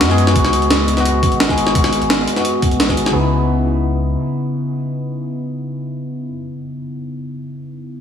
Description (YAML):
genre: liquid drum and bass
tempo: 172 BPM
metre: 4/4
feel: straight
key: C# minor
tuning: A4 = 443 Hz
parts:
  - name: bell-like tine electric piano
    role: accompaniment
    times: 0.0-8.0 s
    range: C#3 to G#4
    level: -18 LUFS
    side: left 1 dB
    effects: phaser, low-pass filter, diffuse ambient delay
  - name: warm sub bass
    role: bass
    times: 0.0-4.2 s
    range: G#1 to F#2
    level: -19 LUFS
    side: left 2 dB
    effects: none
  - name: breakbeat sampler-style drum kit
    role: drums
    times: 0.0-3.1 s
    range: hi-hat, snare drum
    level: -18 LUFS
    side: equal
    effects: none
  - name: electronic kick drum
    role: drums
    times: 0.4-3.0 s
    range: none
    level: -18 LUFS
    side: equal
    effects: none
room: moderate lush hall reverb, RT60 2.3 s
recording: dreamy mix soaked in reverb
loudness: -14 LUFS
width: side -8 dB against mid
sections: 0.0-3.1 A section; 3.1-5.9 B section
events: filter sweep on tine electric piano 0.0-3.1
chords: 0.0 G#m7; 3.1 C#m9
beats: 0.01 | 0.36 0.70 1.05 1.40 | 1.75 2.10 2.45 2.80 | 3.15 3.50 3.84 4.19 | 4.54 4.89 5.24 5.59